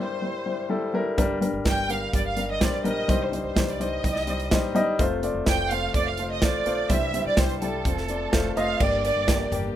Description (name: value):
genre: piano-driven pop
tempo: 126 BPM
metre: 4/4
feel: straight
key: G minor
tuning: A4 = 442 Hz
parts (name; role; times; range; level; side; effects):
- rich studio violin section; melody; 0.0-9.5 s; A4 to G5; -28 LUFS; right 2 dB; none
- warm grand piano; accompaniment; 0.0-9.8 s; G2 to Eb5; -26 LUFS; left 2 dB; none
- upright bass; bass; 1.2-9.7 s; F1 to C2; -33 LUFS; right 1 dB; none
- modern studio drum kit; drums; 1.2-9.6 s; crash cymbal, hi-hat, kick drum, snare drum, toms; -25 LUFS; right 1 dB; none
- warm studio string section; sustained chords; 8.8-9.8 s; D3 to G4; -39 LUFS; left 2 dB; none
room: light reverb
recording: rough home demo mix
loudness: -22 LUFS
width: side -11 dB against mid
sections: 0.0-8.8 A section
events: none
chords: 0.0 C; 1.2 Gm; 3.1 Cm; 5.0 F; 6.9 C; 7.9 F; 8.8 Gm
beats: 0.23 0.71 | 1.18 1.66 2.13 2.61 | 3.09 3.56 4.04 4.51 | 4.99 5.47 5.95 6.42 | 6.90 7.37 7.85 8.33 | 8.80 9.28 9.76